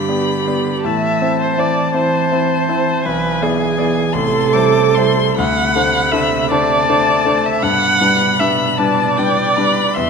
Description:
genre	classical, slow romantic movement for piano quartet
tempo	53 BPM (dotted quarters)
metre	6/8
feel	uneven beats, rubato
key	G major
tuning	A4 = 440 Hz
part	rich violin	melody	0.0-10.1 s	G5 to D6	-20 LUFS	left 8 dB	none
part	rich cello	second line	0.0-10.1 s	B2 to E3	-22 LUFS	right 7 dB	none
part	clear concert grand piano	accompaniment	0.0-10.1 s	A1 to D5	-19 LUFS	left 3 dB	none
part	warm viola	accompaniment	0.0-10.1 s	G4 to F#5	-17 LUFS	right 4 dB	none
room	moderate concert hall reverb, RT60 2.0 s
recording	none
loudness	-13 LUFS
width	side -5 dB against mid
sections	0.0-10.1 A section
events	none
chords	0.0 G; 0.8 Am; 3.1 E7/B; 4.1 Am7; 5.4 D7; 7.6 G

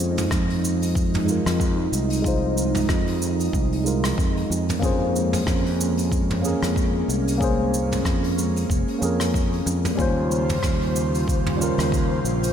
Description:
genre	sunset chillout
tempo	93 BPM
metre	4/4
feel	swing 58% on 16ths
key	unclear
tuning	A4 = 440 Hz
part	tine electric piano	accompaniment	0.0-12.5 s	G3 to C5	-26 LUFS	moving between left 5 dB and right 5 dB	auto-pan, low-pass filter, ping-pong delay, shimmer reverb
part	airy breathy pad	sustained chords	0.0-12.5 s	Db3 to C5	-26 LUFS	right 1 dB	chorus, shimmer reverb
part	fretless electric bass	bass	0.0-12.5 s	F1 to F2	-24 LUFS	equal	none
part	soft brush drum kit	drums	0.0-12.5 s	cabasa, hi-hat, rim click, toms	-30 LUFS	right 1 dB	gated reverb
part	electronic kick drum	drums	0.3-12.1 s	none	-25 LUFS	equal	none
room	moderate lush hall reverb, RT60 2.5 s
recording	bright 1980s-style digital production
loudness	-20 LUFS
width	side -9 dB against mid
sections	0.0-12.5 A section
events	filter sweep on tine electric piano 0.0-12.5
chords	0.0 Fm7; 4.5 Bbm9; 10.0 Eb13

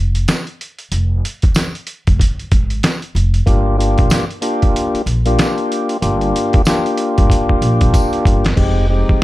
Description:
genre	hip hop, boom-bap hip-hop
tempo	94 BPM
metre	4/4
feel	swing 61% on 16ths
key	F dorian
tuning	A4 = 439 Hz
part	upright bass	bass	0.0-9.2 s	F1 to Bb1	-16 LUFS	equal	none
part	trip hop sampler-style drum kit	drums	0.1-9.2 s	crash cymbal, hi-hat, kick drum, snare drum	-15 LUFS	equal	none
part	tambourine	percussion	0.3-8.1 s	none	-32 LUFS	right 3 dB	none
part	tonewheel organ	accompaniment	3.5-9.2 s	F2 to G4	-17 LUFS	left 1 dB	slow rotary speaker, high-pass filter, low-pass filter, plate reverb
room	little or no reverb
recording	dark, warm production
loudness	-13 LUFS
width	side -17 dB against mid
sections	0.0-8.6 A section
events	break 0.0-3.5; drum fill 7.3-8.6; hi-hats muted 8.6-9.2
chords	0.0 Fm; 3.5 Gm7; 8.6 Fm9

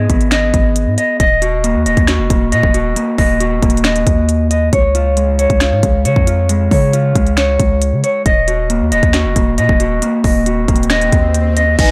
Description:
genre	hip hop, trap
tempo	136 BPM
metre	4/4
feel	half-time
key	Eb minor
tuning	A4 = 439 Hz
part	mellow electric guitar	arpeggios	0.0-11.9 s	Ab3 to Eb5	-17 LUFS	equal	delay
part	long sustained 808-style bass	bass	0.0-11.9 s	Eb1 to Db3	-18 LUFS	equal	none
part	trap drum kit	drums	0.1-11.9 s	crash cymbal, finger snaps, hi-hat, kick drum, snare drum	-18 LUFS	equal	none
part	swell and downlifter	sound effects	10.3-11.9 s	none	-29 LUFS	equal	none
part	flute section	sustained chords	11.8-11.9 s	Eb4 to Ab5	-20 LUFS	equal	none
room	digital ambience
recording	none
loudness	-14 LUFS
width	mono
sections	0.0-11.8 A section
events	swell 10.3-11.8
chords	0.0 Abm; 1.2 Ebm; 4.7 Db; 8.3 Ebm

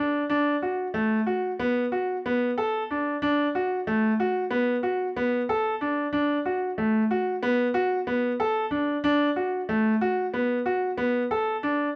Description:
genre	contemporary instrumental, contemporary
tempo	186 BPM (eighths)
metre	9/8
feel	straight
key	B minor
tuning	A4 = 437 Hz
part	bright concert grand piano	solo	0.0-11.9 s	A3 to A4	-26 LUFS	equal	none
room	light reverb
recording	close, detailed microphones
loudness	-26 LUFS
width	mono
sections	0.0-12.0 A section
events	none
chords	none

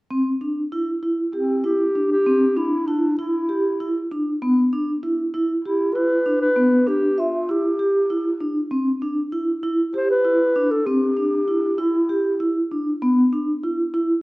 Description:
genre	contemporary instrumental, chamber music in an uneven meter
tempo	195 BPM (eighths)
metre	7/8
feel	straight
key	unclear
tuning	A4 = 445 Hz
part	vibraphone with medium mallets	arpeggios	0.1-14.1 s	B3 to E5	-20 LUFS	equal	none
part	breathy clarinet	melody	1.4-12.4 s	C4 to C5	-20 LUFS	equal	none
room	moderate recital hall reverb, RT60 1.4 s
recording	worn, warbling old tape, cassette tape, warbly pitch drift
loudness	-18 LUFS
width	side -20 dB against mid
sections	0.1-14.2 A section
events	none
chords	0.1 Cadd9; 4.4 Em7; 8.7 Cadd9; 13.0 E7(no3)

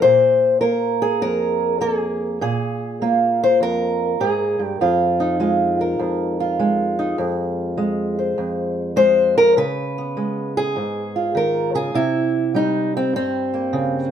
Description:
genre	acoustic country blues, solo or duo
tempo	101 BPM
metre	4/4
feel	swing 67% on 8ths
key	F minor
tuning	A4 = 439 Hz
part	fingerpicked old ladder-braced acoustic guitar	solo	0.0-14.1 s	F2 to C5	-17 LUFS	equal	none
room	wet studio reverb, RT60 0.8 s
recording	band playing live in one room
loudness	-17 LUFS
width	side -9 dB against mid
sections	0.0-14.1 A section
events	none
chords	0.0 Bb5; 4.8 Fm7; 9.6 Db7; 11.9 C7b9

